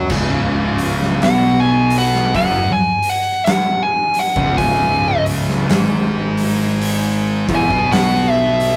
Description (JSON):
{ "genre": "stoner and doom metal", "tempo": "54 BPM", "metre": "4/4", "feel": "swing 61% on 8ths", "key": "C# minor", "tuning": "A4 = 442 Hz", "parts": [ { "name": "thick fuzz guitar", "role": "riff", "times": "0.0-8.8 s", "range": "C#2 to F#4", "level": "-21 LUFS", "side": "equal", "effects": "distortion" }, { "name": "thick fuzz guitar", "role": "riff", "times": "0.0-8.8 s", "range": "C#2 to B3", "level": "-28 LUFS", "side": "equal", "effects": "distortion" }, { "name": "fuzz fingered electric bass", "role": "bass", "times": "0.0-8.8 s", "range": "C#1 to B1", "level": "-24 LUFS", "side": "equal", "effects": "overdrive" }, { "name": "oversized low-tuned drum kit", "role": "drums", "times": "0.1-8.8 s", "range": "crash cymbal, hi-hat, kick drum, snare drum", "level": "-23 LUFS", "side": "equal", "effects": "none" }, { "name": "fuzz lead guitar", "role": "melody", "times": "1.2-8.8 s", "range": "E5 to G#5", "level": "-19 LUFS", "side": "equal", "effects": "distortion" } ], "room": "light reverb", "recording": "rough rehearsal-room recording", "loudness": "-16 LUFS", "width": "mono", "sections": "0.1-8.8 A section", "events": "lead electric guitar solo 0.1-8.8", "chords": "0.1 C#5", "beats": "| 0.10 1.23 2.34 3.46 | 4.58 5.70 6.81 7.92" }